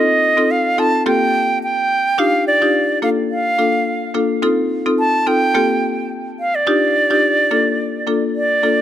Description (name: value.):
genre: afrobeats.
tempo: 107 BPM.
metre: 4/4.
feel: swing 55% on 16ths.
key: Bb major.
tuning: A4 = 440 Hz.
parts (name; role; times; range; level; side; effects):
silver concert flute; melody; 0.0-8.8 s; D5 to A5; -16 LUFS; right 2 dB; tape echo.
marimba with medium hard mallets; accompaniment; 0.0-8.8 s; Bb3 to A4; -18 LUFS; left 2 dB; none.
room: light reverb, small room ambience.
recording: none.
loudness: -14 LUFS.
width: side -11 dB against mid.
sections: 0.0-8.8 A section.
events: none.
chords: 0.0 F7; 1.1 Gm11; 2.2 Ebmaj9; 3.0 Bbmaj7; 4.4 F7; 5.5 Gm11; 6.7 Ebmaj9; 7.5 Bbmaj7.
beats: 0.50 1.06 1.62 | 2.18 2.74 3.31 3.87 | 4.43 4.99 5.55 6.11 | 6.67 7.23 7.79 8.35.